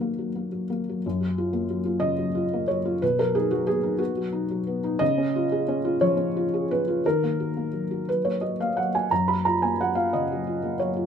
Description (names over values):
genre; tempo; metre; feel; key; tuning
neoclassical minimalist piano; 59 BPM (dotted quarters); 6/8; rubato; F# major; A4 = 439 Hz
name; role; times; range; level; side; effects
felt-muted upright piano; solo; 0.0-11.1 s; F#2 to B5; -23 LUFS; equal; none
room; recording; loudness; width
moderate studio reverb, RT60 0.5 s; minimal, uncompressed stereo recording; -23 LUFS; side -7 dB against mid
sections
0.0-1.0 A section; 1.0-11.1 B section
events
none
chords
0.0 D#m; 1.0 F#maj7; 3.0 B; 5.0 C#; 7.0 D#m; 9.1 F#maj7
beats
| 1.04 2.03 | 3.01 4.00 | 5.01 6.01 | 7.04 8.07 | 9.10 10.12